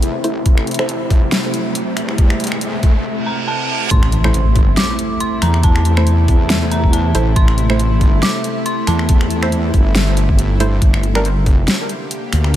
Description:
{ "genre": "deep dubstep", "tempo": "139 BPM", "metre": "4/4", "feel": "swing 56% on 16ths, half-time", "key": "A phrygian", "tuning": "A4 = 440 Hz", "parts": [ { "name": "bowed-like drone", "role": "sustained chords", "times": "0.0-12.6 s", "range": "C3 to G4", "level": "-22 LUFS", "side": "equal", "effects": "built-in reverb" }, { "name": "wobble bass", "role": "bass", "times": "0.0-12.6 s", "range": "E1 to E2", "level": "-16 LUFS", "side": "equal", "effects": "chorus, high-pass filter" }, { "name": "dubstep drum kit", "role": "drums", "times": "0.0-12.6 s", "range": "finger snaps, hi-hat, snare drum", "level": "-21 LUFS", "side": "equal", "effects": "overdrive" }, { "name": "riser, reverse cymbal and impact", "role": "sound effects", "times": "1.1-5.6 s", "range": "none", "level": "-24 LUFS", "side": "equal", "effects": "none" }, { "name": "wind-like tuned noise texture", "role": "texture", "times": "0.0-3.0 s", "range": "E4", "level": "-30 LUFS", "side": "left 6 dB", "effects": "built-in reverb" }, { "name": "filtered dub chord stab", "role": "stabs", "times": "0.2-0.9, 4.2-11.2 s", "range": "G3 to C5", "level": "-24 LUFS", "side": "right 2 dB", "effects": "chorus, dub echo" }, { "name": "electronic kick drum", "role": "drums", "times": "0.5-11.6 s", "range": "none", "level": "-12 LUFS", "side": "equal", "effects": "none" }, { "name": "dark detuned synth bell", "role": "melody", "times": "3.3-9.5 s", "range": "A5 to D6", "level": "-24 LUFS", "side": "equal", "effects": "chorus, dub echo" } ], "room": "digital ambience", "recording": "none", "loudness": "-13 LUFS", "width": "side -12 dB against mid", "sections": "0.0-3.9 A section; 3.9-12.6 B section", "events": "build-up 0.0-3.9; filter sweep on synth stab 0.0-3.9; filter sweep on synth drone 0.0-3.9; riser 1.1-3.0; break 3.0-3.9; reverse cymbal 3.0-3.9; drop 3.9-12.6; impact 3.9-5.6", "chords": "0.0 Am; 10.8 Gm" }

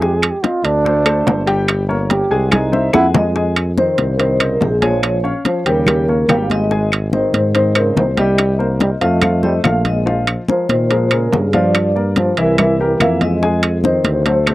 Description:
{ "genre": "Afro-Cuban jazz", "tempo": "143 BPM", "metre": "4/4", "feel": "straight", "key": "F minor", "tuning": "A4 = 443 Hz", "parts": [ { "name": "breathy trombone", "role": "second line", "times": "0.0-14.5 s", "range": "B2 to Ab4", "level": "-20 LUFS", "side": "right 2 dB", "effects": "none" }, { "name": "dark baby grand piano", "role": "accompaniment", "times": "0.0-14.5 s", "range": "E3 to Ab5", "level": "-21 LUFS", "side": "left 2 dB", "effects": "none" }, { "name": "mellow tuba", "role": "bass", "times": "0.0-14.5 s", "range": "G1 to Bb2", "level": "-18 LUFS", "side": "equal", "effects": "none" }, { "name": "bongos", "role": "percussion", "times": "0.0-14.5 s", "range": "none", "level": "-21 LUFS", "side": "left 4 dB", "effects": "none" }, { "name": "congas", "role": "percussion", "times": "0.0-14.5 s", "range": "none", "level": "-22 LUFS", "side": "left 1 dB", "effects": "none" }, { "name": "claves", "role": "percussion", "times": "0.2-14.5 s", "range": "none", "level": "-23 LUFS", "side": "left 2 dB", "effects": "none" }, { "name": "timbales", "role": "percussion", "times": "0.2-14.5 s", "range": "none", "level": "-20 LUFS", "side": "right 4 dB", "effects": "none" }, { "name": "vibraphone with soft mallets", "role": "melody", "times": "2.9-14.5 s", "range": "Ab4 to Gb5", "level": "-19 LUFS", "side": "left 1 dB", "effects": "none" } ], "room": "light reverb", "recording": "cassette tape", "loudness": "-13 LUFS", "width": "side -17 dB against mid", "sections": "0.0-3.4 A section; 3.4-14.5 B section", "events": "trombone solo 0.0-3.4; drum fill 2.7-3.4", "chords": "0.0 Fm7; 0.9 D5; 1.7 Gdim; 2.5 Caug; 3.4 Fm7; 5.0 Bbm7; 5.9 Eb7; 6.7 Ab; 8.4 C5; 9.2 F; 10.1 Bb5; 11.7 Gm7; 12.6 C7; 13.4 Fm7" }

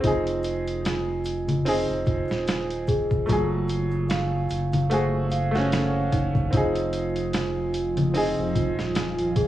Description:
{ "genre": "trip hop", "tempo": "74 BPM", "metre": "4/4", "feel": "swing 56% on 16ths", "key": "F phrygian", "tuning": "A4 = 441 Hz", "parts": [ { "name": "clear upright piano", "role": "accompaniment", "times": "0.0-9.5 s", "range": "Gb3 to Ab4", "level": "-27 LUFS", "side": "equal", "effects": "harmonic tremolo, tape echo" }, { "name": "large celesta", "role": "arpeggios", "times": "0.0-9.5 s", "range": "Eb4 to F5", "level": "-29 LUFS", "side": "right 2 dB", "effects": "low-pass filter, digital delay" }, { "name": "round analog bass", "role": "bass", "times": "0.0-9.5 s", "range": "Eb1 to Gb1", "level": "-29 LUFS", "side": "left 1 dB", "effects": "none" }, { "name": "boom bap sampler-style drum kit", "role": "drums", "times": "0.0-9.5 s", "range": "hi-hat, kick drum, snare drum", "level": "-28 LUFS", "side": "equal", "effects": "none" }, { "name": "egg shaker and congas", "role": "percussion", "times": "0.0-9.5 s", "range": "none", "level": "-26 LUFS", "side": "left 1 dB", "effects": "none" }, { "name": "string machine, cellos", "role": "sustained chords", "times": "6.5-9.5 s", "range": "F3 to F4", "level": "-30 LUFS", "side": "equal", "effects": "ensemble chorus" } ], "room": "light reverb, small room ambience", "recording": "worn, warbling old tape, cassette tape, vinyl crackle, warbly pitch drift, studio ambience", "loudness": "-22 LUFS", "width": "side -13 dB against mid", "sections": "0.0-9.5 A section", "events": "filter sweep on celesta 0.0-9.5", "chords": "0.0 Fm7; 3.3 Gbmadd9; 6.5 Fm7" }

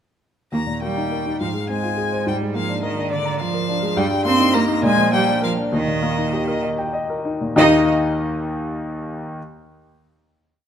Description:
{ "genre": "quick classical-period movement for piano trio", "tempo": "64-71 BPM (dotted quarters)", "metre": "6/8", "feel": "rubato", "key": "Eb major", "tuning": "A4 = 440 Hz", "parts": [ { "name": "rich violin", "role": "melody", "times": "0.5-7.9 s", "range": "D5 to C6", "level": "-24 LUFS", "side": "left 5 dB", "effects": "none" }, { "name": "clear cello", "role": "second line", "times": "0.5-7.9 s", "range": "D3 to Eb4", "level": "-23 LUFS", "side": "right 6 dB", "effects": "none" }, { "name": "warm grand piano", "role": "accompaniment", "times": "0.5-9.4 s", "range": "Eb2 to Bb5", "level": "-20 LUFS", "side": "left 1 dB", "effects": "none" } ], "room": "moderate scoring stage reverb, RT60 1.7 s", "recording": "close, detailed microphones", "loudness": "-18 LUFS", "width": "side -9 dB against mid", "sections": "0.5-7.6 A section; 7.6-9.4 final chord", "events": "none", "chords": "0.5 Eb; 1.4 Fm/Ab; 2.3 Bb7/Ab; 4.0 Eb/G; 4.8 Bb; 5.7 Eb" }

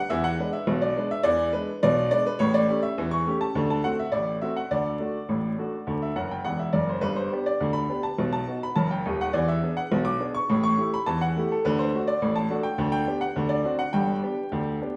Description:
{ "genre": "ragtime piano", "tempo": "104 BPM", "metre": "2/4", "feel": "straight", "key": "unclear", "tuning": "A4 = 441 Hz", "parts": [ { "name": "clear baby grand piano", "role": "solo", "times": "0.0-15.0 s", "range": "D#1 to D6", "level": "-26 LUFS", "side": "equal", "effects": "none" } ], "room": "wet stone room reverb, RT60 1.3 s", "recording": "band playing live in one room, vinyl crackle, nothing above 10.4 kHz", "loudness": "-26 LUFS", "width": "mono", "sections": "0.0-15.0 A section", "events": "grand piano fill 6.2-7.0", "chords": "0.1 E7; 2.4 A7; 3.6 D7; 4.7 D; 7.0 G; 8.2 B; 9.3 E7; 10.5 A5; 11.6 D; 12.8 G/D; 13.4 D7; 13.9 G" }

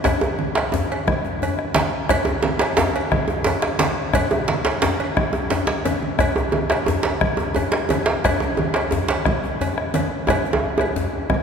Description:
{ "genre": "west african traditional, West African drum ensemble", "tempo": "117 BPM (dotted quarters)", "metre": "12/8", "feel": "straight", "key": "none", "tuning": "none", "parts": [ { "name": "bombo", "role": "percussion", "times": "0.0-11.4 s", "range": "none", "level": "-25 LUFS", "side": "left 2 dB", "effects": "none" }, { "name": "congas", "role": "percussion", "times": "0.0-11.4 s", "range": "none", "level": "-27 LUFS", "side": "right 2 dB", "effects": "none" }, { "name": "djembe", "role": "percussion", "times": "0.0-10.9 s", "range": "none", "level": "-22 LUFS", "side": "right 2 dB", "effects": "none" }, { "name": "cowbell", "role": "percussion", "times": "0.1-11.0 s", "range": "none", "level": "-27 LUFS", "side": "right 4 dB", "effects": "none" }, { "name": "djembe", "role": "percussion", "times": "0.1-11.1 s", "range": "none", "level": "-26 LUFS", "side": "left 4 dB", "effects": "none" } ], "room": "wet cathedral reverb, RT60 4.6 s", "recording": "recorded in a church or concert hall", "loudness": "-18 LUFS", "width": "side -6 dB against mid", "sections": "0.0-11.4 A section", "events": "drum fill 5.7-6.2", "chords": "none" }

